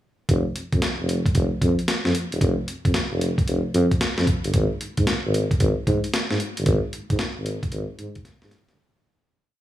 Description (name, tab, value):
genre	R&B, new jack swing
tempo	113 BPM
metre	4/4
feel	swing 65% on 16ths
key	F minor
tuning	A4 = 440 Hz
part	mellow tuba	bass	0.3-8.8 s	E1 to Ab2	-23 LUFS	equal	none
part	boom bap sampler-style drum kit	drums	0.3-8.8 s	hi-hat, kick drum, snare drum	-23 LUFS	equal	none
room	little or no reverb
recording	small room ambience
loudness	-20 LUFS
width	side -13 dB against mid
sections	0.3-8.8 breakdown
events	fade-out 6.7-8.8; drum fill 8.3-8.8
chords	none